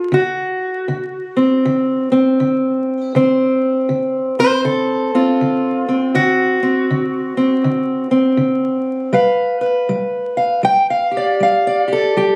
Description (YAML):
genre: acoustic country blues, solo or duo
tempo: 80 BPM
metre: 4/4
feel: swing 62% on 8ths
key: D mixolydian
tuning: A4 = 440 Hz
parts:
  - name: fingerpicked steel-string acoustic guitar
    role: solo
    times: 0.0-12.4 s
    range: D3 to G5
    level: -16 LUFS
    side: equal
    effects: none
room: little or no reverb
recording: recorded on a phone in the room, studio reverb, vinyl crackle, compression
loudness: -17 LUFS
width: mono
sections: 0.0-12.4 A section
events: none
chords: 0.0 D7; 9.1 G7